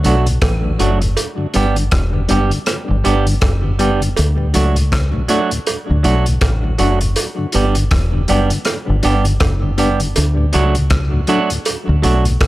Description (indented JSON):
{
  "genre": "roots reggae",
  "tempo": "80 BPM",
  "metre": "4/4",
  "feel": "swing 58% on 16ths",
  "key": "D major",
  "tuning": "A4 = 441 Hz",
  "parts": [
    { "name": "mellow tonewheel organ", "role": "accompaniment", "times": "0.0-12.3 s", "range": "D2 to D4", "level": "-22 LUFS", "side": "left 2 dB", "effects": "slow rotary speaker, tape echo" },
    { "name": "semi-hollow electric guitar", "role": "accompaniment", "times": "0.0-12.2 s", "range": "F#3 to G4", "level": "-20 LUFS", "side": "right 4 dB", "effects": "tape echo" },
    { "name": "deep dub fingered electric bass", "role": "bass", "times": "0.0-12.5 s", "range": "E1 to D2", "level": "-16 LUFS", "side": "equal", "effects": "none" },
    { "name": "crunchy breakbeat drum kit", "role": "drums", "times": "0.0-12.5 s", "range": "hi-hat, kick drum, rim click", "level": "-20 LUFS", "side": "equal", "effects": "none" },
    { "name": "cowbell", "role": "percussion", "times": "0.4-12.5 s", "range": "none", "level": "-23 LUFS", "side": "right 5 dB", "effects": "none" }
  ],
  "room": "studio ambience",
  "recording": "none",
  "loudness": "-13 LUFS",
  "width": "side -17 dB against mid",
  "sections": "0.0-12.5 A section",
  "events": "none",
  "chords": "0.0 D; 1.2 G; 4.2 D; 7.2 G; 10.2 D",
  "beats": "0.42 | 1.17 1.92 2.67 3.42 | 4.17 4.92 5.67 6.42 | 7.17 7.92 8.66 9.41 | 10.16 10.91 11.66 12.41"
}